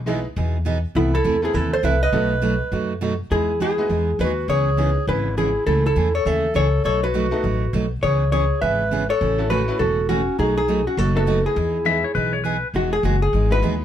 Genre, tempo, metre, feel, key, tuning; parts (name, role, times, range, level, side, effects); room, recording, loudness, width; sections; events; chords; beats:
country; 204 BPM; 4/4; swing 62% on 8ths; E major; A4 = 441 Hz
upright bass; bass; 0.0-13.8 s; E1 to F#2; -22 LUFS; left 1 dB
picked steel-string acoustic guitar; accompaniment; 0.1-13.7 s; B2 to B4; -25 LUFS; right 5 dB
tack piano; accompaniment; 0.1-4.9, 7.3-13.8 s; G#3 to B4; -28 LUFS; left 1 dB
vintage hollow-body jazz guitar; melody; 1.0-13.8 s; E4 to E5; -22 LUFS; left 2 dB
breathy clarinet; second line; 1.0-12.4 s; B3 to B4; -26 LUFS; right 2 dB
clean lap steel guitar; second line; 11.9-12.7 s; B4 to E5; -22 LUFS; left 7 dB
light reverb; -18 LUFS; side -10 dB against mid
0.0-3.3 A section; 3.3-12.7 B section; 12.7-13.8 C section
hollow-body jazz guitar solo 12.7-13.8
0.0 Emaj7/B; 1.0 Amadd9/C; 2.1 B7; 3.3 Emaj9; 4.5 C#m9; 5.7 Amaj7/C#; 6.8 B7; 8.0 C#m7; 9.2 A6; 10.4 B7; 11.6 Emaj7; 12.7 Emaj9
0.07 0.36 0.66 | 0.95 1.25 1.54 1.83 | 2.13 2.42 2.72 3.01 | 3.31 3.60 3.90 4.19 | 4.49 4.78 5.08 5.37 | 5.67 5.96 6.26 6.55 | 6.85 7.14 7.44 7.73 | 8.03 8.32 8.62 8.91 | 9.21 9.50 9.80 10.09 | 10.38 10.68 10.97 11.27 | 11.56 11.86 12.15 12.44 | 12.74 13.03 13.33 13.62